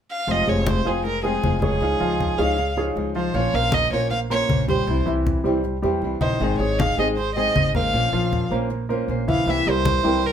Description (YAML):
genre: latin, Cuban son and guajira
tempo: 157 BPM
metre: 4/4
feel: straight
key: F minor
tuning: A4 = 441 Hz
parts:
  - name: warm violin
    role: melody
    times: 0.1-10.3 s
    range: Ab4 to F5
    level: -24 LUFS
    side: right 2 dB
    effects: none
  - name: flamenco guitar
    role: accompaniment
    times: 0.3-10.3 s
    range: C3 to C5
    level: -27 LUFS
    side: left 3 dB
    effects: none
  - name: warm baby grand piano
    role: arpeggios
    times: 0.3-10.3 s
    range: Eb3 to C6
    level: -25 LUFS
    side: right 1 dB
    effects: none
  - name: upright bass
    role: bass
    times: 0.3-10.3 s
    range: F1 to E2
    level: -26 LUFS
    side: equal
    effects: none
  - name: congas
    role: percussion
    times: 0.3-10.3 s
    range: none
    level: -26 LUFS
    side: left 2 dB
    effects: none
room: light reverb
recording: minimal, uncompressed stereo recording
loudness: -19 LUFS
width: side -8 dB against mid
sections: 0.3-10.3 A section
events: none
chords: 0.3 Fm; 1.8 Dbadd9; 3.3 Bbmadd9; 4.9 C; 6.4 Ab; 7.9 Bbmadd9; 9.5 C7